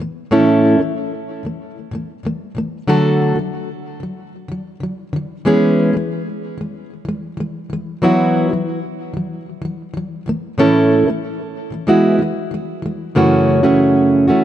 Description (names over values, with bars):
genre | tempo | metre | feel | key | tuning
pop | 93 BPM | 4/4 | straight | A major | A4 = 441 Hz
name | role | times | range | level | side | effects
fingerpicked plugged-in steel-string acoustic guitar | solo | 0.0-14.4 s | F#2 to A4 | -15 LUFS | equal | ping-pong delay
room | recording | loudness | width
moderate plate reverb, RT60 2.6 s | nothing above 10.4 kHz | -14 LUFS | side -11 dB against mid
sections
0.0-13.2 A section; 13.2-14.4 B section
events
none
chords
0.0 A; 2.9 D; 5.5 C#m7/E; 8.0 Esus2; 10.3 A; 11.9 Eadd9; 13.2 F#m7